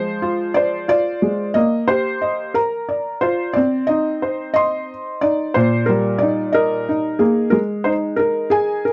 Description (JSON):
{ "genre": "children's music, lullaby", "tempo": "60 BPM (dotted quarters)", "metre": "6/8", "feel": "straight", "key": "Eb major", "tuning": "A4 = 440 Hz", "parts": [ { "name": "felt-muted upright piano", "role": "solo", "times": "0.0-8.9 s", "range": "Bb2 to C6", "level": "-19 LUFS", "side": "equal", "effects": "none" } ], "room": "light reverb", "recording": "dry, close 1970s-style studio recording", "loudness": "-19 LUFS", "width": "mono", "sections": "0.0-8.9 A section", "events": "none", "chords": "0.0 Fm; 1.5 Eb/Bb; 2.5 Bb; 3.5 Cm; 5.5 Eb/Bb; 7.5 Absus2" }